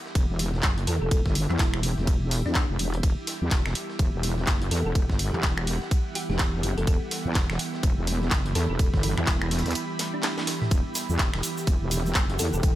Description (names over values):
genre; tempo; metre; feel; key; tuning
bass house; 125 BPM; 4/4; swing 60% on 16ths; E minor; A4 = 441 Hz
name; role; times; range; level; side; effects
sweeping resonant pad; sustained chords; 0.0-12.8 s; E3 to F#5; -37 LUFS; right 4 dB; chorus, sidechain pumping
ethereal airy pad; texture; 0.0-12.8 s; E4 to B5; -37 LUFS; right 1 dB; ensemble chorus, built-in reverb, sidechain pumping
breakbeat sampler-style drum kit; drums; 0.1-12.8 s; hi-hat, snare drum, tambourine; -38 LUFS; equal; sidechain pumping on perc, high-pass filter on perc, small room ambience, high-pass filter on snare, sidechain pumping on hats, high-pass filter on hats, high-pass filter on room
wobble bass; bass; 0.2-12.8 s; E1 to E2; -27 LUFS; equal; chorus, sidechain pumping
electronic kick drum; drums; 0.2-12.7 s; none; -24 LUFS; equal; small room ambience
garage drum kit; drums; 0.2-12.7 s; finger snaps, handclaps, hi-hat, ride cymbal, snare drum, toms; -31 LUFS; equal; small room ambience
thumb-piano-like synth pluck; melody; 0.9-12.6 s; D4 to A4; -35 LUFS; equal; ensemble chorus, tape echo
egg shaker; percussion; 10.7-12.7 s; none; -36 LUFS; right 2 dB; none
room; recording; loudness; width
little or no reverb; none; -23 LUFS; side -14 dB against mid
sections
0.0-12.8 A section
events
break 9.8-10.7; drum fill 10.0-10.7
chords
0.0 Emadd9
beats
0.15 0.63 | 1.11 1.59 2.07 2.55 | 3.03 3.51 3.99 4.47 | 4.95 5.43 5.91 6.39 | 6.87 7.35 7.83 8.31 | 8.79 9.27 9.75 10.23 | 10.71 11.19 11.67 12.15 | 12.63